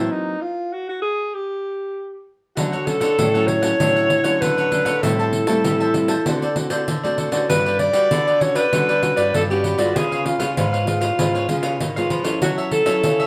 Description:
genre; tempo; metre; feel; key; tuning
samba and choro; 98 BPM; 4/4; straight; D major; A4 = 441 Hz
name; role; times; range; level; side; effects
breathy alto saxophone; melody; 0.0-13.3 s; D#4 to D5; -23 LUFS; equal; none
cavaquinho; accompaniment; 0.0-13.3 s; D4 to A5; -28 LUFS; equal; none
nylon-string guitar; accompaniment; 0.0-13.3 s; G#2 to A4; -29 LUFS; equal; none
nylon-string guitar; bass; 0.0-13.3 s; G2 to A3; -27 LUFS; equal; none
pandeiro; percussion; 2.6-13.3 s; none; -27 LUFS; equal; none
room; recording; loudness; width
moderate studio reverb, RT60 0.7 s; band playing live in one room; -20 LUFS; mono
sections
0.0-2.6 A section; 2.6-13.3 B section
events
stop 0.1-2.6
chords
0.1 F#maj13; 1.3 N.C.; 2.6 Dmaj7; 5.0 Am7; 6.3 D7; 7.5 Gmaj7#11; 10.0 C#7; 12.4 F#m7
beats
| 0.11 0.72 1.34 1.96 | 2.57 3.19 3.80 4.42 | 5.03 5.65 6.26 6.88 | 7.49 8.11 8.73 9.34 | 9.96 10.57 11.19 11.80 | 12.42 13.04

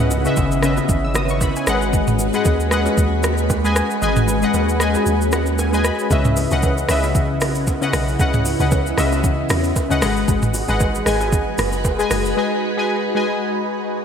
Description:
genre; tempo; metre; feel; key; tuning
amapiano; 115 BPM; 4/4; swing 55% on 16ths; C# minor; A4 = 440 Hz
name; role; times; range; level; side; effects
warm analog keys; accompaniment; 0.0-14.0 s; C#3 to E6; -20 LUFS; left 3 dB; chorus
ensemble organ-string; sustained chords; 0.0-14.0 s; C#3 to B4; -24 LUFS; right 1 dB; phaser, ensemble chorus, sidechain pumping
punchy sub bass; bass; 0.0-5.9 s; G#1 to D#2; -22 LUFS; right 1 dB; none
smooth R&B drum kit; drums; 0.1-12.4 s; hi-hat, kick drum, rim click, shaker, toms; -22 LUFS; right 1 dB; gated reverb
bongos and congas; percussion; 0.1-12.0 s; none; -31 LUFS; right 6 dB; none
deep log drum bass; bass; 6.1-12.3 s; F#1 to E2; -23 LUFS; right 1 dB; none
room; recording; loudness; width
moderate lush hall reverb, RT60 1.8 s, digital ambience; bright 1980s-style digital production; -16 LUFS; side -7 dB against mid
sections
0.0-14.0 A section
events
kick muted 4.0-6.1; synth keys fill 5.1-6.1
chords
0.0 C#m9; 1.7 G#m7; 6.1 C#m9; 10.0 G#m7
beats
0.37 0.89 1.41 | 1.94 2.46 2.98 3.50 | 4.02 4.54 5.07 5.59 | 6.11 6.63 7.15 7.67 | 8.20 8.72 9.24 9.76 | 10.28 10.80 11.33 11.85 | 12.37 12.89 13.41 13.94

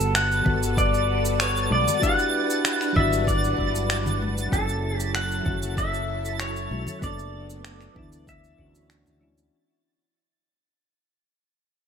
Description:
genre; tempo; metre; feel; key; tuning
sunset chillout; 96 BPM; 4/4; straight; E dorian; A4 = 440 Hz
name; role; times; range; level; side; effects
pedal steel guitar; melody; 0.0-8.9 s; A4 to F#5; -26 LUFS; left 1 dB; digital delay
soft electric-piano-like synth keys; accompaniment; 0.0-9.5 s; E3 to A4; -31 LUFS; moving between left 3 dB and right 5 dB; chorus, auto-pan
soft string machine; sustained chords; 0.0-9.5 s; D3 to F#5; -34 LUFS; equal; phaser, ensemble chorus
fretless electric bass; bass; 0.0-9.5 s; F#1 to D2; -28 LUFS; equal; none
electronic cabasa and finger snaps; drums; 0.0-9.5 s; none; -29 LUFS; right 1 dB; gated reverb
twinkling granular texture; texture; 0.2-9.5 s; A6; -34 LUFS; right 4 dB; built-in reverb
electronic kick drum; drums; 0.5-8.7 s; none; -27 LUFS; equal; none
congas; percussion; 0.5-9.3 s; none; -32 LUFS; left 2 dB; none
room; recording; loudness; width
moderate plate reverb, RT60 2.0 s; bright 1980s-style digital production; -21 LUFS; side -7 dB against mid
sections
0.0-9.5 A section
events
fade-out 2.9-9.5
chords
0.0 Gmaj9; 2.0 Em9; 4.5 F#m7; 7.0 Bm7/F#; 8.3 Dmaj9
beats
0.15 0.77 1.40 | 2.02 2.65 3.27 3.90 | 4.52 5.15 5.77 6.40 | 7.02 7.65 8.27 8.90

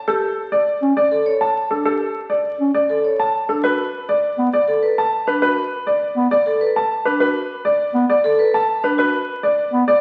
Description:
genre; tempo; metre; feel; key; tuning
classical, minimalist pattern music; 101 BPM; 3/4; straight; B minor; A4 = 440 Hz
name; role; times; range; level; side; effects
bright baby grand piano; melody; 0.1-10.0 s; A4 to A5; -20 LUFS; equal; none
vibraphone with medium mallets; arpeggios; 0.1-9.2 s; D4 to C#5; -23 LUFS; equal; none
dark bass clarinet; accompaniment; 0.8-9.8 s; B3 to C#4; -22 LUFS; equal; none
room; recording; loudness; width
wet stone room reverb, RT60 1.4 s; very old 78 rpm record, vinyl crackle; -18 LUFS; mono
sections
0.0-10.0 A section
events
none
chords
0.0 Gsus2; 3.6 Bm7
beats
| 0.08 0.67 1.26 | 1.86 2.45 3.05 | 3.64 4.24 4.83 | 5.42 6.02 6.61 | 7.21 7.80 8.39 | 8.99 9.58

